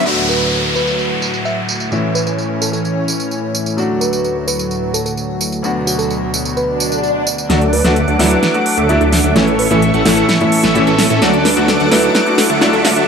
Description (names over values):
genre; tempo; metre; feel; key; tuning
EDM, festival progressive house; 129 BPM; 4/4; straight; D major; A4 = 441 Hz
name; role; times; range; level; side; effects
clear concert grand piano; accompaniment; 0.0-12.7 s; D2 to F#4; -19 LUFS; left 1 dB; ping-pong delay
lush unison pad; sustained chords; 0.0-13.1 s; D2 to D6; -20 LUFS; equal; chorus
supersaw chords; riff; 0.0, 7.5-13.1 s; E3 to F#5; -17 LUFS; right 1 dB; phaser, low-pass filter, ping-pong delay
big-room dance drum kit; drums; 0.1-13.1 s; crash cymbal, hi-hat, snare drum, tambourine; -19 LUFS; equal; low-pass filter on hats, small room ambience, low-pass filter on perc, low-pass filter on snare, low-pass filter on cymbals
downlifter, swell and riser; sound effects; 0.1-13.1 s; none; -22 LUFS; equal; none
bell-like FM electric piano; melody; 0.3-12.6 s; F#4 to E5; -22 LUFS; right 2 dB; chorus, tremolo, ping-pong delay
detuned saw bass; bass; 7.5-13.1 s; A1 to A2; -19 LUFS; equal; none
room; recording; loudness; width
light reverb, digital ambience; high-pass filter; -12 LUFS; side -6 dB against mid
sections
0.1-7.5 A section; 7.5-13.1 B section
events
swell 6.7-7.5; build-up 7.5-13.1; drum fill 7.5-13.1; filter sweep on supersaw synth 7.5-13.1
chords
0.1 D; 1.9 A; 3.8 D; 5.6 Bm/D; 7.5 D; 9.4 A; 11.2 D